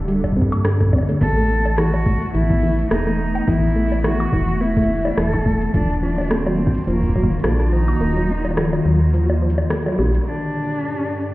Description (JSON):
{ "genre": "IDM", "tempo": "106 BPM", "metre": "4/4", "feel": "swing 56% on 16ths", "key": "unclear", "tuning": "A4 = 440 Hz", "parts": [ { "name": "hollow soft pad", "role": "sustained chords", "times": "0.0-11.3 s", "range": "G2 to A4", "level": "-24 LUFS", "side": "left 1 dB", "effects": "ensemble chorus" }, { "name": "metallic FM bass", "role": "bass", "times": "0.0-10.2 s", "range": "D1 to G2", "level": "-20 LUFS", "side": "equal", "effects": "none" }, { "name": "deep acid bass", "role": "arpeggios", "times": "0.1-10.1 s", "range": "E3 to E4", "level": "-24 LUFS", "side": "equal", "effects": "tape echo" }, { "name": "electro analog drum machine", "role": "drums", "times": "0.1-10.2 s", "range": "bongos, cabasa, hi-hat, rim click", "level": "-27 LUFS", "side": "equal", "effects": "low-pass filter on hats, low-pass filter on perc, low-pass filter on snare, tape echo" }, { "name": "electronic kick drum", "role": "drums", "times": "0.2-7.3 s", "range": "none", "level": "-20 LUFS", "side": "equal", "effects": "overdrive" }, { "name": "warm cello", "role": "melody", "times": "1.2-11.3 s", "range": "Bb3 to A4", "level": "-25 LUFS", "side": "equal", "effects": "tape echo" }, { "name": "bubbling stepped-filter texture", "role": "texture", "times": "10.6-11.3 s", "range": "D5", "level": "-34 LUFS", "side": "equal", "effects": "chorus, built-in reverb" } ], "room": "light reverb, digital ambience", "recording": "heard muffled through a wall, stone room reverb, EQ", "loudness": "-16 LUFS", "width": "side -18 dB against mid", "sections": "0.0-10.3 A section; 10.3-11.3 B section", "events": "kick drops out 8.0-10.3; band accent 9.7", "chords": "0.0 Dsus4; 1.2 Asus2; 5.7 Ebmadd9; 10.3 Gm", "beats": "0.08 0.65 | 1.21 1.78 2.35 2.91 | 3.48 4.04 4.61 5.17 | 5.74 6.31 6.87 7.44 | 8.01 8.57 9.14 9.70 | 10.27 10.84" }